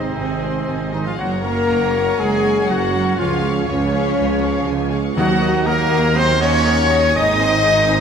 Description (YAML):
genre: cinematic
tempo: 121 BPM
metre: 4/4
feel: straight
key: Eb dorian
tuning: A4 = 444 Hz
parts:
  - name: warm symphonic violin section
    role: melody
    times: 0.0-8.0 s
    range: C5 to Eb6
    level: -27 LUFS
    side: left 2 dB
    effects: none
  - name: clear clarinet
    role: second line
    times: 0.0-8.0 s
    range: C4 to Eb5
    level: -28 LUFS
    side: left 3 dB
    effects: none
  - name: mellow hollow concert flute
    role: second line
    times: 0.0-8.0 s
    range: F5 to Bb5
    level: -32 LUFS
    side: left 4 dB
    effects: none
  - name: rich symphonic violin section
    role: second line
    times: 0.0-8.0 s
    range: Bb4 to Db6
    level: -31 LUFS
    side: left 1 dB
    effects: none
  - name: warm oboe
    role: second line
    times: 0.0-8.0 s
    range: Db5 to Eb5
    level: -31 LUFS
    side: right 1 dB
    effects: none
  - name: clear symphonic viola section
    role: accompaniment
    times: 0.0-8.0 s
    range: Gb3 to C5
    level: -29 LUFS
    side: right 1 dB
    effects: none
  - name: clear trombone section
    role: sustained chords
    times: 0.0-8.0 s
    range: Eb3 to Eb4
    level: -27 LUFS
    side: right 3 dB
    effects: none
  - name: dark French horn section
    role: sustained chords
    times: 0.0-8.0 s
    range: C4 to Eb5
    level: -22 LUFS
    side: left 5 dB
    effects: none
  - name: mellow trumpet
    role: stabs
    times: 0.0-8.0 s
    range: C4 to Eb5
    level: -22 LUFS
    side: equal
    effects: none
  - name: clear symphonic double bass section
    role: bass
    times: 0.0-8.0 s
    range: Gb1 to Eb2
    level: -24 LUFS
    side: right 4 dB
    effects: none
  - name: rich symphonic cello section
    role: bass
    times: 0.0-8.0 s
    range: C3 to Eb4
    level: -24 LUFS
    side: right 3 dB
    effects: none
  - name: warm tuba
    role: bass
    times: 0.0-8.0 s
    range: Gb1 to Eb2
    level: -25 LUFS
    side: right 4 dB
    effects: none
  - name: timpani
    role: percussion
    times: 5.2-5.9 s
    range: Eb3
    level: -26 LUFS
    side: left 3 dB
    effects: none
room: wet scoring stage reverb, RT60 1.8 s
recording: none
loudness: -15 LUFS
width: side -7 dB against mid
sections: 0.0-8.0 A section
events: none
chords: 0.0 Ab; 1.2 Gb; 3.2 Db; 5.2 Ebm; 7.2 Ab